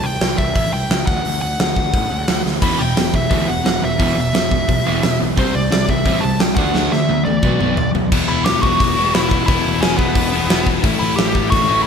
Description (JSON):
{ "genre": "punk rock", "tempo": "175 BPM", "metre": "4/4", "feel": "straight", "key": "E minor, E dorian from 8.1 s", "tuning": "A4 = 440 Hz", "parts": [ { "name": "nasal lead guitar with a parked wah", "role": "melody", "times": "0.0-11.9 s", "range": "B3 to B5", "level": "-20 LUFS", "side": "equal", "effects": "overdrive, slapback echo" }, { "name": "fuzz picked electric bass", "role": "bass", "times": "0.0-11.8 s", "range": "E1 to A2", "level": "-24 LUFS", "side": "equal", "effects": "overdrive" }, { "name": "big rock drum kit", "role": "drums", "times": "0.2-11.6 s", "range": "crash cymbal, hi-hat, kick drum, snare drum, toms", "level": "-18 LUFS", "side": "equal", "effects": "none" }, { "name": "overdriven electric guitar", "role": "riff", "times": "2.6-11.9 s", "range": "E2 to D4", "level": "-22 LUFS", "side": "left 12 dB", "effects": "none" }, { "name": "overdriven semi-hollow guitar", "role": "riff", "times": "2.6-8.1 s", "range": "E2 to D4", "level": "-21 LUFS", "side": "right 10 dB", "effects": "none" }, { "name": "heavy high-gain guitar", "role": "riff", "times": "8.1-11.9 s", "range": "A2 to E4", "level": "-24 LUFS", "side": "left 1 dB", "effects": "distortion" } ], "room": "moderate lush hall reverb, RT60 1.6 s, small room ambience", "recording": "big arena sound", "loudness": "-14 LUFS", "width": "side -6 dB against mid", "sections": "0.0-8.1 A section; 8.1-11.9 B section", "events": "drum fill 2.5, 6.8-8.1", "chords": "0.0 C5; 1.1 D; 2.6 E5; 5.4 C5; 6.6 D; 7.4 Bm; 8.1 Em; 10.8 A" }